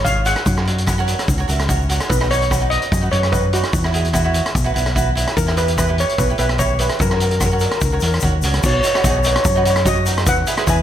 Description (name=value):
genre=calypso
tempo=147 BPM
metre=4/4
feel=swing 54% on 16ths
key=B major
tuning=A4 = 440 Hz
part: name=steel pan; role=melody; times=0.0-10.8 s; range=F#4 to G#5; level=-20 LUFS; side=equal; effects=slapback echo, ping-pong delay
part: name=cavaquinho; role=accompaniment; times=0.0-10.8 s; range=D#4 to E5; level=-24 LUFS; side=right 4 dB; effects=slapback echo
part: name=fingered electric bass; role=bass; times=0.0-10.8 s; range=G#1 to F#2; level=-19 LUFS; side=equal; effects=none
part: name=street-band drum kit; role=drums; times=0.1-10.8 s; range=crash cymbal, hi-hat, kick drum, rim click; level=-20 LUFS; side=equal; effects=none
part: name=tube shaker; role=percussion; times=0.1-10.8 s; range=none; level=-29 LUFS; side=left 7 dB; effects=none
room=moderate lush hall reverb, RT60 1.6 s, studio ambience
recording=big arena sound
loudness=-15 LUFS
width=side -10 dB against mid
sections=0.0-8.6 A section; 8.6-10.8 B section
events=none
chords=0.5 F#; 2.1 Badd9; 3.7 Esus2; 5.4 Em; 7.0 F#; 8.6 B; 10.3 E